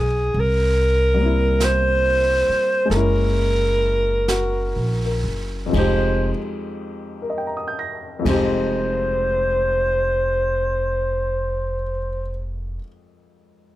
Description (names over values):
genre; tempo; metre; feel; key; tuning
jazz ballad; 40-49 BPM; 4/4; swing 69% on 8ths; F minor; A4 = 440 Hz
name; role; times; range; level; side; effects
breathy alto saxophone; melody; 0.0-12.5 s; Ab4 to C5; -20 LUFS; right 1 dB; none
warm baby grand piano; accompaniment; 0.0-13.8 s; F2 to Bb6; -25 LUFS; left 2 dB; none
upright bass; bass; 0.0-12.8 s; F1 to C2; -23 LUFS; equal; none
jazz brush drum kit; drums; 0.3-8.5 s; brushed snare drum, hi-hat, kick drum, ride cymbal, snare drum; -31 LUFS; right 2 dB; none
room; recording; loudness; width
light reverb; close, detailed microphones; -18 LUFS; side -15 dB against mid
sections
0.0-5.7 A section; 5.7-11.7 B section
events
slowing down 0.0-5.7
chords
0.3 C7; 2.9 Gb7; 5.7 Fm7